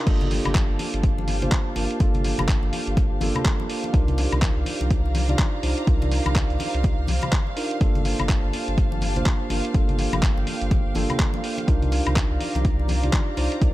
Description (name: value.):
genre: deep house.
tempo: 124 BPM.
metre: 4/4.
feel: swing 60% on 16ths.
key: G minor.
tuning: A4 = 440 Hz.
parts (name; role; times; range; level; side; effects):
warbly tape-like pad; sustained chords; 0.0-13.7 s; D5 to Bb5; -36 LUFS; left 2 dB; chorus, built-in reverb, sidechain pumping.
mellow tine electric piano; stabs; 0.0-13.7 s; Bb3 to D5; -29 LUFS; right 2 dB; sidechain pumping, digital delay.
dark studio string section; texture; 0.0-13.7 s; G4 to Bb5; -34 LUFS; right 2 dB; sidechain pumping.
warm sub bass; bass; 0.1-13.7 s; G1 to C2; -25 LUFS; equal; sidechain pumping.
dusty soul sampler-style drum kit; drums; 0.1-13.7 s; crash cymbal, handclaps, hi-hat, woodblock; -30 LUFS; left 1 dB; none.
electronic kick drum; drums; 0.1-13.7 s; none; -21 LUFS; equal; overdrive.
congas; percussion; 0.2-13.5 s; none; -32 LUFS; left 2 dB; none.
room: little or no reverb.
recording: dark, warm production.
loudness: -20 LUFS.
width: side -16 dB against mid.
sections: 0.1-13.7 A section.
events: drop 0.1-13.7.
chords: 0.1 Gm9; 3.9 Cm11; 7.8 Gm9; 11.7 Cm11.